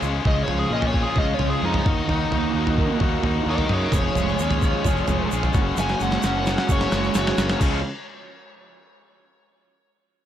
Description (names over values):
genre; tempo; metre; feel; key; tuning
indie rock; 131 BPM; 4/4; straight; Db major; A4 = 440 Hz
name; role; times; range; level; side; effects
mellow tonewheel organ; sustained chords; 0.0-7.8 s; Db4 to Eb6; -37 LUFS; equal; none
biting overdriven guitar; riff; 0.0-7.8 s; Db3 to Ab4; -27 LUFS; left 9 dB; none
overdriven electric guitar; riff; 0.0-7.8 s; Db3 to F5; -28 LUFS; right 9 dB; lush chorus, digital delay
fuzz fingered electric bass; bass; 0.0-7.8 s; F1 to Bb2; -26 LUFS; equal; overdrive
egg shaker; percussion; 0.0-0.1, 3.9-7.8 s; none; -40 LUFS; right 24 dB; none
biting lead guitar; melody; 0.3-7.6 s; Eb4 to Ab5; -28 LUFS; left 1 dB; overdrive, digital delay
boom bap sampler-style drum kit; drums; 0.3-7.7 s; crash cymbal, kick drum, snare drum, toms; -24 LUFS; equal; none
room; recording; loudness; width
light reverb; dark, warm production; -19 LUFS; side -10 dB against mid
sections
0.3-7.6 A section; 7.6-9.4 B section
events
break 0.0; lead electric guitar solo 0.3-7.6; drum fill 5.8-7.6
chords
0.3 Db; 1.9 Ebmadd9; 3.9 Db/F; 5.5 Gbadd9; 7.6 Db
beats
| 0.26 0.72 1.18 1.64 | 2.10 2.56 3.02 3.48 | 3.94 4.40 4.86 5.31 | 5.77 6.23 6.69 7.15 | 7.61